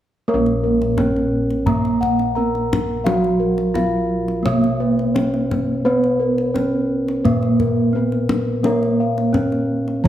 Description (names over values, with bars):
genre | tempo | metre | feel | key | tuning
Javanese gamelan | 86 BPM | 4/4 | straight | Bb pelog | A4 = 440 Hz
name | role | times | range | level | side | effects
gamelan-type bronze metallophone | melody | 0.3-10.1 s | Bb3 to Bb4 | -22 LUFS | right 1 dB | none
gamelan-type bronze metallophone | accompaniment | 0.3-10.1 s | F3-30c to Cb4+20c | -23 LUFS | right 2 dB | none
gamelan-type bossed gongs | arpeggios | 0.3-10.1 s | Bb4 to Bb5 | -24 LUFS | left 3 dB | none
gamelan-type bossed gongs | bass | 0.3-10.1 s | Bb1 to Cb5+20c | -22 LUFS | equal | none
kendang | percussion | 0.5-10.1 s | none | -25 LUFS | left 2 dB | none
room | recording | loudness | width
moderate recital hall reverb, RT60 1.4 s | none | -16 LUFS | side -12 dB against mid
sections
0.3-10.1 A section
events
none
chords
none